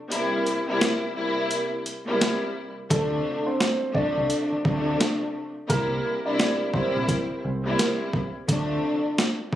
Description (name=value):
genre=hip hop, boom-bap hip-hop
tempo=86 BPM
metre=4/4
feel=swing 61% on 16ths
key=unclear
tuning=A4 = 445 Hz
part: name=warm studio string section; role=accompaniment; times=0.1-9.6 s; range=C3 to E4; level=-26 LUFS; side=left 1 dB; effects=cassette tape, high-pass filter, low-pass filter
part: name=boom bap sampler-style drum kit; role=drums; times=0.1-9.6 s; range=hi-hat, kick drum, snare drum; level=-25 LUFS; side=equal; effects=overdrive
part: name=dark upright piano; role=melody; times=2.9-8.0 s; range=A3 to D5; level=-28 LUFS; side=right 1 dB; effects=high-pass filter, low-pass filter, digital delay
part: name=deep dub fingered electric bass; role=bass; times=2.9-8.8 s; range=Bb1 to D2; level=-28 LUFS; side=right 1 dB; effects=none
room=little or no reverb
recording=recorded on a phone in the room, studio ambience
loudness=-23 LUFS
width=side -12 dB against mid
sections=0.0-9.6 A section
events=break 0.0-2.9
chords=0.1 C7; 2.9 Dm7; 5.7 C7; 8.5 Dm7